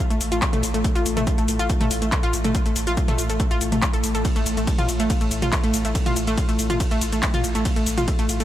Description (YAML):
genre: driving peak-time techno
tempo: 141 BPM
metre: 4/4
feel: straight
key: unclear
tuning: A4 = 442 Hz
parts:
  - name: deep dark ambient pad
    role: drone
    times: 0.0-8.4 s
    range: A2 to A3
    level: -30 LUFS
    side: equal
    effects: chorus, built-in reverb, sidechain pumping
  - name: analog pluck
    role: riff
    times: 0.1-8.4 s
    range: A3 to A4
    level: -25 LUFS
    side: equal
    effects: chorus, tube saturation, sidechain pumping, tape echo
  - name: warm sub bass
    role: bass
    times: 0.1-8.4 s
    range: A1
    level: -28 LUFS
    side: equal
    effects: sidechain pumping, low-pass filter
  - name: techno drum kit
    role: drums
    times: 0.1-8.4 s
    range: handclaps, hi-hat, ride cymbal, shaker, toms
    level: -27 LUFS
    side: equal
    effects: none
  - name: electronic kick drum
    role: drums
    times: 0.4-8.2 s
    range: none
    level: -23 LUFS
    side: equal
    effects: none
room: light reverb, digital ambience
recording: none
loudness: -19 LUFS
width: side -12 dB against mid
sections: 0.0-8.4 A section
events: none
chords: 0.0 A5